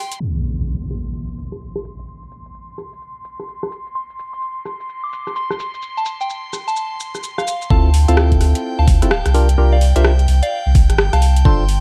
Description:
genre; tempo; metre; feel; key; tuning
UK garage, two-step garage; 128 BPM; 4/4; swing 62% on 16ths; unclear; A4 = 440 Hz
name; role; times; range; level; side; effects
soft synth bell; melody; 0.0-0.1, 4.0-11.7 s; C5 to D6; -27 LUFS; equal; chorus, tape echo
airy breathy pad; sustained chords; 0.0-11.8 s; G5 to C6; -33 LUFS; equal; chorus, sidechain pumping
garage drum kit; drums; 0.1-11.8 s; hi-hat, rim click; -25 LUFS; equal; low-pass filter on hats, low-pass filter on snare, low-pass filter on room
maracas; percussion; 0.1-7.7 s; none; -34 LUFS; equal; none
impact; sound effects; 0.2-2.1 s; none; -27 LUFS; equal; none
percussive organ stab; stabs; 7.7-11.6 s; C4 to C5; -24 LUFS; equal; chorus, dub echo
saturated sub bass; bass; 7.7-11.8 s; D1 to D2; -16 LUFS; equal; tube saturation
electronic kick drum; drums; 7.7-11.6 s; none; -16 LUFS; equal; none
room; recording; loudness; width
light reverb; vinyl crackle, low-pass filter; -17 LUFS; mono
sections
0.2-7.7 A section; 7.7-11.8 B section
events
break 0.0; impact 0.2-2.1; filter sweep on analog synth pad 0.2-7.7; filter sweep 0.2-7.7; drop 7.7-11.8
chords
0.2 N.C.; 7.7 Dm7; 9.3 C9sus4

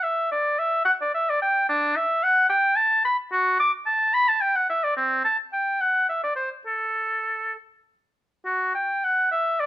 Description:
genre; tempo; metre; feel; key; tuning
classical, baroque-style fantasia for unaccompanied oboe; 65-75 BPM (dotted quarters); 6/8; rubato; G major; A4 = 440 Hz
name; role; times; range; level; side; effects
warm oboe; solo; 0.0-9.7 s; C4 to D6; -20 LUFS; equal; none
room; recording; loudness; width
light reverb; none; -20 LUFS; side -14 dB against mid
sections
0.0-8.5 A section; 8.5-9.7 B section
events
none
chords
none

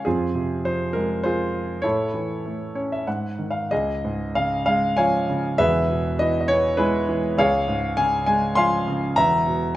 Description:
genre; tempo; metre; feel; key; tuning
classical, lyrical solo piano; 100 BPM; 3/4; rubato; unclear; A4 = 440 Hz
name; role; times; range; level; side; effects
warm concert grand piano; solo; 0.0-9.8 s; E1 to C6; -20 LUFS; equal; none
room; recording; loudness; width
moderate concert hall reverb, RT60 1.9 s; none; -20 LUFS; side -14 dB against mid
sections
0.0-3.7 A section; 3.7-9.8 B section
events
grand piano fill 2.4-3.7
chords
0.1 Fm; 1.8 A; 3.1 Ab5; 3.7 Db; 5.6 E; 7.4 Db; 9.2 E5

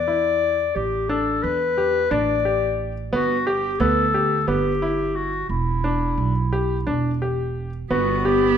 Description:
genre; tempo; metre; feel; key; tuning
contemporary instrumental, chamber music in an uneven meter; 176 BPM (eighths); 7/8; straight; E minor; A4 = 440 Hz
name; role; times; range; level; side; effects
warm clarinet; melody; 0.0-8.6 s; E4 to D5; -22 LUFS; left 3 dB; none
upright bass; bass; 0.0-8.6 s; E1 to E2; -26 LUFS; right 3 dB; none
bright baby grand piano; arpeggios; 0.1-8.5 s; B3 to G4; -25 LUFS; left 1 dB; none
warm cello; second line; 7.9-8.6 s; B3; -23 LUFS; right 11 dB; none
room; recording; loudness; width
light reverb; minimal, uncompressed stereo recording; -19 LUFS; side -8 dB against mid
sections
0.0-7.9 A section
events
none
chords
0.0 E7(no3); 0.8 A9sus4; 3.1 G; 5.5 Em7; 7.9 G

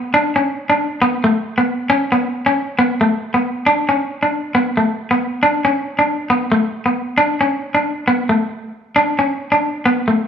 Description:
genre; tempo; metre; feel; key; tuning
highlife; 136 BPM; 4/4; swing 53% on 16ths; unclear; A4 = 440 Hz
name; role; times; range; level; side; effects
semi-hollow electric guitar; solo; 0.1-10.2 s; A3 to D4; -15 LUFS; equal; none
room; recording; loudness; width
wet stone room reverb, RT60 1.3 s; band playing live in one room; -15 LUFS; side -8 dB against mid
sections
0.0-3.7 A section; 3.7-10.3 B section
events
none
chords
none

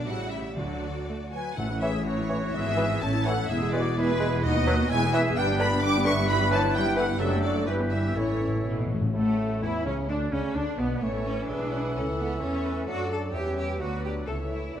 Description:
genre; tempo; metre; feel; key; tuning
quick classical-period movement for symphony orchestra; 128 BPM; 2/4; rubato; A major; A4 = 439 Hz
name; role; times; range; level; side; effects
rich studio violin section; melody; 0.0-14.8 s; A3 to D6; -35 LUFS; left 2 dB; none
rich studio violin section; second line; 0.0-14.8 s; A3 to D6; -38 LUFS; left 1 dB; none
rich studio viola section; accompaniment; 0.0-14.8 s; C#3 to D5; -34 LUFS; right 1 dB; none
clear studio cello section; bass; 0.0-14.8 s; D#2 to A4; -33 LUFS; right 1 dB; none
rich studio double bass section; bass; 0.0-14.8 s; E1 to F#2; -31 LUFS; right 2 dB; none
timpani; percussion; 0.6-2.3, 8.2-9.1 s; A2 to D3; -34 LUFS; left 2 dB; none
hollow flute section; second line; 1.3-14.8 s; E4 to G5; -36 LUFS; left 3 dB; none
dark trumpet section; stabs; 1.3-8.7 s; B4 to D6; -32 LUFS; right 2 dB; none
mellow French horn section; sustained chords; 1.6-14.8 s; E3 to G4; -32 LUFS; left 2 dB; none
mellow clarinet; second line; 1.8-14.8 s; A3 to C#5; -35 LUFS; left 2 dB; none
warm bassoon; accompaniment; 1.8-14.8 s; A2 to G#3; -35 LUFS; right 1 dB; none
clear oboe; second line; 2.1-14.8 s; B3 to E5; -38 LUFS; equal; none
room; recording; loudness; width
wet scoring stage reverb, RT60 1.6 s; none; -24 LUFS; side -9 dB against mid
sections
0.0-1.6 A section; 1.6-9.2 B section; 9.2-14.8 A section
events
timpani fill 8.2-9.2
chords
0.1 A7; 0.6 D; 1.6 A; 2.5 E/G#; 3.0 A; 3.5 E; 4.4 B/D#; 4.9 E; 5.4 G; 6.3 Em/G; 7.2 D/F#; 7.7 Em/G; 8.2 A; 9.2 F#m/A; 9.6 C#m; 10.1 Bmadd9; 11.0 A; 11.5 E7/B; 12.0 A/C#; 12.9 D/F#; 13.3 C#dim/E; 13.8 Bm/D; 14.3 A/C#

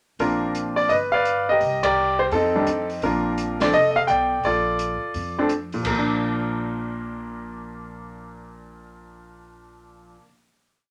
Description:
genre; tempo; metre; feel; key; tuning
jazz piano trio; 170 BPM; 4/4; swing 64% on 8ths; Bb major; A4 = 440 Hz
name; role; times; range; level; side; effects
clear grand piano; melody; 0.2-10.2 s; Bb2 to G5; -23 LUFS; equal; none
upright bass; bass; 0.2-10.1 s; F1 to F2; -37 LUFS; equal; none
open jazz drum kit; drums; 0.2-6.0 s; crash cymbal, hi-hat, kick drum, ride cymbal, snare drum; -36 LUFS; equal; none
room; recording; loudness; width
moderate studio reverb, RT60 0.7 s; none; -22 LUFS; mono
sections
0.2-5.8 A section; 5.8-8.7 final chord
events
band accent 1.8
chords
0.2 Bb; 0.9 G7; 1.6 C5; 2.3 F7; 3.0 Bbmaj7; 5.8 Bb

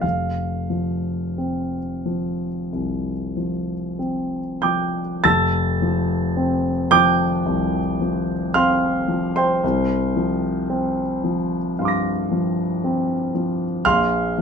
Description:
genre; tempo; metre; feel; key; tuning
classical, impressionist solo piano; 44-59 BPM; 4/4; rubato; F major; A4 = 440 Hz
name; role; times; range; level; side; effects
dark concert grand piano; solo; 0.0-14.4 s; F1 to Bb6; -19 LUFS; equal; none
room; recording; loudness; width
light reverb; none; -19 LUFS; side -6 dB against mid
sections
0.0-5.2 A section; 5.2-14.4 B section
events
none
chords
0.0 F5; 5.2 Fadd9; 9.6 C9sus4; 13.8 Bbsus2

